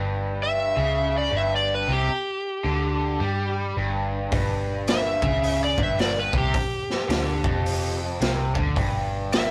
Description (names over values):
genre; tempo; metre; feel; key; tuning
blues rock power trio and southern rock; 108 BPM; 4/4; swing 62% on 8ths; unclear; A4 = 440 Hz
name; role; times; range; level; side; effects
raw garage guitar; riff; 0.0-9.5 s; F2 to G3; -31 LUFS; equal; overdrive
vintage muted picked electric bass; bass; 0.0-9.5 s; F1 to G2; -30 LUFS; equal; none
overdriven slide guitar; melody; 0.4-9.5 s; G4 to E5; -28 LUFS; equal; none
raw garage drum kit; drums; 4.3-9.5 s; hi-hat, kick drum, snare drum; -28 LUFS; equal; none
room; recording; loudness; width
light reverb; rough rehearsal-room recording, tube saturation; -24 LUFS; mono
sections
0.0-9.5 A section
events
none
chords
0.0 G5